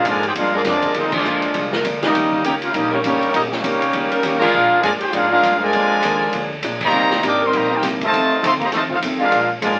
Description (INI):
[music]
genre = jazz, big band swing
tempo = 201 BPM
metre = 4/4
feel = swing 60% on 8ths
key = Bb major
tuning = A4 = 442 Hz
[part]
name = clear trumpet section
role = melody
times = 0.0-9.8 s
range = Bb3 to D6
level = -22 LUFS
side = equal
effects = none
[part]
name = bright trombone section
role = second line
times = 0.0-9.8 s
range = C3 to G4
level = -23 LUFS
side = equal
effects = none
[part]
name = upright bass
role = bass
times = 0.0-9.8 s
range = G1 to Bb2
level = -35 LUFS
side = equal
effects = none
[part]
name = swinging big-band drum kit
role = drums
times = 0.0-9.7 s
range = crash cymbal, hi-hat, kick drum, ride cymbal, snare drum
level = -27 LUFS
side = equal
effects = none
[part]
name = archtop guitar, miked and amplified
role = accompaniment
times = 0.1-9.8 s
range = F2 to G4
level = -29 LUFS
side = equal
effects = none
[part]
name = warm saxophone section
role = sustained chords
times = 0.5-9.4 s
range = F3 to Bb4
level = -28 LUFS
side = equal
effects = none
[sound]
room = wet studio ambience, RT60 0.5 s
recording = very old 78 rpm record, vinyl crackle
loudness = -18 LUFS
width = mono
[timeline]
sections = 0.0-9.8 A section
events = band accent 1.1, 4.4, 6.8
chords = 0.0 Bb7; 2.1 Eb7; 4.5 Bb7; 6.9 Cm7; 8.1 F7